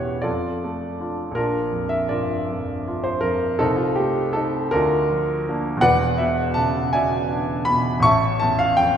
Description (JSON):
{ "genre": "classical, romantic character piece for solo piano", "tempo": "54 BPM (dotted quarters)", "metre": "6/8", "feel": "rubato", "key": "unclear", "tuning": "A4 = 441 Hz", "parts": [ { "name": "warm grand piano", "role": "solo", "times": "0.0-9.0 s", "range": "E1 to C#6", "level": "-19 LUFS", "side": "equal", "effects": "none" } ], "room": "wet recital hall reverb, RT60 1.4 s", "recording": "recorded in a church or concert hall", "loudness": "-19 LUFS", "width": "side -8 dB against mid", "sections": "0.0-9.0 A section", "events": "none", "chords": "0.3 Dm/F; 1.4 Bb; 3.6 Adim/C; 4.7 Bb/D; 5.8 E7; 8.0 A", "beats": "0.25 | 1.37 2.49 | 3.63 4.72 | 5.83 6.92 | 8.01" }